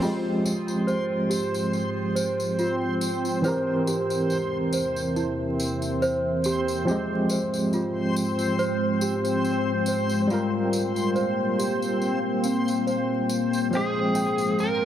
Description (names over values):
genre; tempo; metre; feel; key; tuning
trip hop; 70 BPM; 4/4; swing 54% on 16ths; F harmonic minor; A4 = 442 Hz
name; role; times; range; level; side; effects
overdriven tine electric piano; accompaniment; 0.0-14.8 s; E3 to G5; -27 LUFS; right 1 dB; tremolo, vintage 12-bit sampler grit, low-pass filter, tape echo
deep dark ambient pad; sustained chords; 1.1-14.8 s; E3 to G5; -30 LUFS; left 2 dB; chorus, built-in reverb
celesta; arpeggios; 0.0-14.8 s; C4 to G5; -28 LUFS; right 1 dB; low-pass filter, ping-pong delay
tambourine; percussion; 0.0-14.8 s; none; -36 LUFS; left 2 dB; none
backwards swelling texture; texture; 0.0-14.8 s; C4 to C5; -31 LUFS; equal; built-in reverb
overdriven slide guitar; melody; 13.8-14.8 s; Ab4 to Bb4; -31 LUFS; left 1 dB; tape echo
room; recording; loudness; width
light reverb, small room ambience; heavily compressed radio sound, vinyl crackle; -22 LUFS; side -10 dB against mid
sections
0.0-14.8 A section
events
filter sweep on tine electric piano 0.0-14.8; filter sweep on ambient pad 0.0-14.8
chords
0.0 Fmadd9; 3.4 C7/E; 6.9 Fmadd9; 10.3 Fsus24; 13.7 Fmadd9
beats
| 0.02 0.87 1.73 2.59 | 3.44 4.30 5.16 6.02 | 6.87 7.73 8.59 9.45 | 10.30 11.16 12.02 12.87 | 13.73 14.59